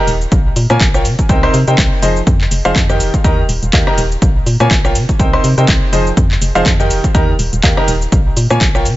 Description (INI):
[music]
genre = piano house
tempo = 123 BPM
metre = 4/4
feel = swing 57% on 16ths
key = F minor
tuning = A4 = 441 Hz
[part]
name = bright baby grand piano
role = riff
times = 0.0-8.8 s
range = C3 to C6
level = -16 LUFS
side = equal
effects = sidechain pumping, dub echo
[part]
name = organ-like FM bass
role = bass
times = 0.1-9.0 s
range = Eb1 to C3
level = -16 LUFS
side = equal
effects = sidechain pumping
[part]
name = house drum kit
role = drums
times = 0.1-9.0 s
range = handclaps, hi-hat, rim click, shaker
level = -19 LUFS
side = equal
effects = overdrive
[part]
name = electronic kick drum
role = drums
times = 0.3-8.7 s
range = none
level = -14 LUFS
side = equal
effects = overdrive
[sound]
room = little or no reverb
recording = nothing above 7.7 kHz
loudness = -10 LUFS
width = side -16 dB against mid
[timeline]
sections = 0.0-9.0 A section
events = none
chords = 0.3 Bbm7; 1.0 Cm7; 2.0 Fm7; 3.0 Eb; 4.2 Bbm7; 5.0 Cm7; 5.9 Fm7; 6.9 Eb; 8.1 Bbm7